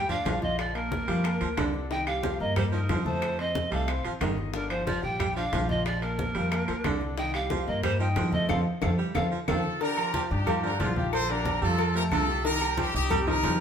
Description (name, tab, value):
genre	latin, salsa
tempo	182 BPM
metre	4/4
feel	straight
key	G minor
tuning	A4 = 439 Hz
part	breathy bright pan flute	melody	0.0-9.6 s	Bb4 to G5	-32 LUFS	right 1 dB	none
part	bright concert grand piano	accompaniment	0.0-13.5 s	D3 to Eb6	-34 LUFS	left 3 dB	none
part	upright bass	bass	0.0-13.6 s	G1 to G2	-30 LUFS	equal	none
part	warm baritone saxophone	second line	0.1-13.6 s	D3 to G3	-34 LUFS	right 3 dB	none
part	congas	percussion	0.1-13.6 s	none	-35 LUFS	left 1 dB	none
part	bongos and cowbell	percussion	0.3-13.6 s	none	-37 LUFS	left 5 dB	none
part	timbales and agogo bells	percussion	0.3-13.6 s	none	-35 LUFS	right 4 dB	none
part	claves	percussion	0.6-13.3 s	none	-42 LUFS	left 6 dB	none
part	brilliant horn section	melody	9.5-13.6 s	D4 to C5	-29 LUFS	equal	none
room	wet stone room reverb, RT60 1.1 s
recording	band playing live in one room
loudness	-25 LUFS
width	side -8 dB against mid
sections	0.0-9.8 A section; 9.8-13.6 B section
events	band accent 8.5-9.8; drum fill 8.8-9.8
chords	0.0 Gm7 (rootless); 0.6 Bbmaj7; 1.9 Cm7; 3.2 F7; 4.5 Gm7; 5.9 Bbmaj7; 7.2 Cm7; 8.5 F; 9.8 Gm7; 11.1 Bbmaj7; 12.4 Cm7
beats	0.26 | 0.59 0.92 1.25 1.57 | 1.91 2.23 2.56 2.89 | 3.22 3.55 3.88 4.21 | 4.54 4.87 5.20 5.53 | 5.86 6.19 6.52 6.85 | 7.18 7.51 7.84 8.16 | 8.49 8.82 9.15 9.48 | 9.81 10.14 10.47 10.80 | 11.13 11.46 11.79 12.12 | 12.45 12.78 13.11 13.44